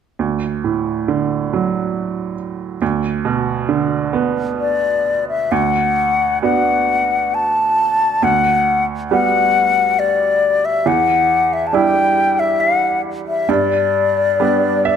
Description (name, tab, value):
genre	celtic folk, Celtic slow air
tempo	68 BPM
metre	3/4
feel	rubato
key	D major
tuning	A4 = 440 Hz
part	bright upright piano	accompaniment	0.2-15.0 s	D2 to E5	-19 LUFS	right 7 dB	none
part	bright wooden flute	melody	4.6-15.0 s	D5 to A5	-15 LUFS	left 4 dB	none
room	moderate recital hall reverb, RT60 1.6 s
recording	close, detailed microphones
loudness	-14 LUFS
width	side -8 dB against mid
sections	0.2-5.5 A section; 5.5-15.0 B section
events	upright piano fill 14.4-15.0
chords	0.2 D; 2.8 Bm/D; 5.5 D6; 8.2 Gmaj7/D; 10.9 Em7; 13.5 G